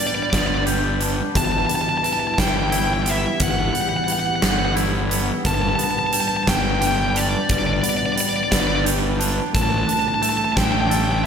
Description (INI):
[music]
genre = post-rock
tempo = 59 BPM (dotted quarters)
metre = 6/8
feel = straight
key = unclear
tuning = A4 = 440 Hz
[part]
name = overdriven electric guitar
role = melody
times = 0.0-11.2 s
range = D5 to A5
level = -22 LUFS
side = equal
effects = digital delay
[part]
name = granular cloud pad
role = sustained chords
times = 0.0-11.3 s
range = G3 to B4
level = -31 LUFS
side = right 1 dB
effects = built-in reverb
[part]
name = twangy electric guitar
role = arpeggios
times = 0.0-11.3 s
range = E2 to A4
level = -26 LUFS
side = left 3 dB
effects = spring reverb, slapback echo, digital delay
[part]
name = fuzz fingered electric bass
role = bass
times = 0.3-11.3 s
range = G1 to A1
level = -24 LUFS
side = equal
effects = overdrive
[part]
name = huge arena drum kit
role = drums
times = 0.3-11.1 s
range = hi-hat, kick drum, snare drum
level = -22 LUFS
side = right 1 dB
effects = none
[sound]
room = wet concert hall reverb, RT60 2.0 s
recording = big arena sound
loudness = -18 LUFS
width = side -7 dB against mid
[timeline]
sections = 0.0-11.3 A section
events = none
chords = 0.0 G; 1.4 Emadd9/G; 5.5 G; 9.5 A7sus4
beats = 0.33 | 1.35 2.38 | 3.40 4.43 | 5.45 6.47 | 7.50 8.52 | 9.54 10.56